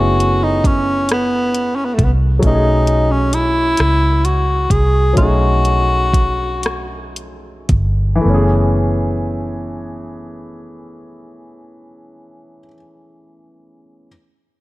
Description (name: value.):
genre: slow six-eight R&B.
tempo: 36-45 BPM (dotted quarters).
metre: 6/8.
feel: straight.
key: F# dorian.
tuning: A4 = 440 Hz.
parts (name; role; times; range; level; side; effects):
breathy tenor saxophone; melody; 0.0-7.1 s; A3 to G#4; -17 LUFS; equal; none.
warm baby grand piano; accompaniment; 0.0-14.1 s; E3 to D#5; -21 LUFS; left 1 dB; none.
vintage muted fingered electric bass; bass; 0.0-12.7 s; F#1 to C#2; -17 LUFS; equal; none.
smooth R&B drum kit; drums; 0.2-7.9 s; hi-hat, kick drum, rim click; -17 LUFS; equal; none.
room: light reverb, studio ambience.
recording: dark, warm production.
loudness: -13 LUFS.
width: side -18 dB against mid.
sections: 0.0-8.2 A section; 8.2-11.6 B section.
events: slowing down 2.4-8.2.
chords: 0.0 F#m11; 2.4 B13; 8.2 F#m11.